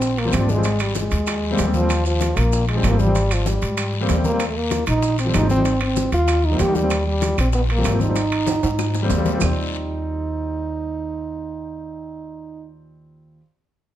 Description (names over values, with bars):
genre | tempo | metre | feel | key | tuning
Afro-Cuban jazz | 192 BPM | 4/4 | straight | Eb major | A4 = 440 Hz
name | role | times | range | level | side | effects
warm French horn | melody | 0.0-12.7 s | F3 to G4 | -23 LUFS | right 1 dB | plate reverb
upright bass | bass | 0.0-13.4 s | Ab1 to Ab2 | -22 LUFS | equal | none
bongos | percussion | 0.0-9.5 s | none | -33 LUFS | left 8 dB | none
congas | percussion | 0.0-9.5 s | none | -29 LUFS | left 2 dB | none
guiro | percussion | 0.0-9.5 s | none | -35 LUFS | left 7 dB | none
maracas | percussion | 0.0-9.5 s | none | -35 LUFS | right 7 dB | none
warm baby grand piano | accompaniment | 0.2-13.4 s | F3 to Eb4 | -24 LUFS | left 1 dB | none
timbales | percussion | 0.2-9.5 s | none | -30 LUFS | right 6 dB | none
claves | percussion | 0.3-9.5 s | none | -34 LUFS | right 7 dB | none
room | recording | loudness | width
light reverb | none | -18 LUFS | side -12 dB against mid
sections
0.0-9.4 A section; 9.4-11.9 B section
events
drum fill 8.5-9.4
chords
0.0 Eb69 (rootless); 0.6 Abmaj7; 1.9 Eb69; 3.1 Abmaj7; 4.4 Eb69; 5.7 Abmaj7; 6.9 Eb69; 8.2 Abmaj7; 9.4 Eb69